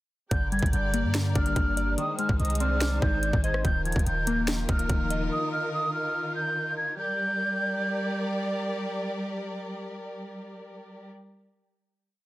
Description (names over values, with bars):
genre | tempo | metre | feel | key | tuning
hip hop, trap | 144 BPM | 4/4 | half-time | G phrygian | A4 = 440 Hz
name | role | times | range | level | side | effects
bright concert flute | melody | 0.3-8.2 s | Eb6 to Ab6 | -30 LUFS | right 1 dB | low-pass filter, tape echo
glassy digital keys | accompaniment | 0.3-6.1 s | D3 to Eb5 | -31 LUFS | left 2 dB | chorus, low-pass filter
warm studio string section | sustained chords | 0.3-11.1 s | Eb3 to D5 | -33 LUFS | equal | none
clean 808-style bass | bass | 0.3-5.3 s | Eb1 to G2 | -28 LUFS | equal | none
trap drum kit | drums | 0.3-5.2 s | hi-hat, kick drum, rim click, snare drum | -27 LUFS | equal | none
soft octave-layered synth lead | second line | 2.4-3.6 s | C5 to Eb5 | -36 LUFS | left 1 dB | chorus, tape echo
room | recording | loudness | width
little or no reverb | dense, heavily limited modern master | -25 LUFS | side -17 dB against mid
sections
0.3-7.0 hook; 7.0-10.3 final chord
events
none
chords
0.3 Gm; 2.0 Ab; 3.6 Ebsus2; 7.0 Gm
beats
| 0.31 0.73 1.15 1.56 | 1.98 2.40 2.81 3.23 | 3.65 4.06 4.48 4.90 | 5.31 5.73 6.15 6.56 | 6.98 7.40 7.81 8.23 | 8.65 9.06 9.48 9.90